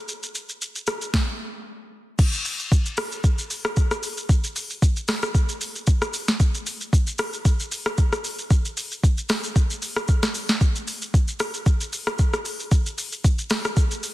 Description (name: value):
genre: amapiano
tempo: 114 BPM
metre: 4/4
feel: swing 55% on 16ths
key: none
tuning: none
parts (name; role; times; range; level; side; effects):
- smooth R&B drum kit; drums; 0.1-14.1 s; crash cymbal, hi-hat, kick drum, rim click, shaker, snare drum; -21 LUFS; equal; overdrive
room: light reverb, digital ambience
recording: dense, heavily limited modern master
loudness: -21 LUFS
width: side -16 dB against mid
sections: 0.0-2.2 A section; 2.2-14.1 B section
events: drop 2.2-14.1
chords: none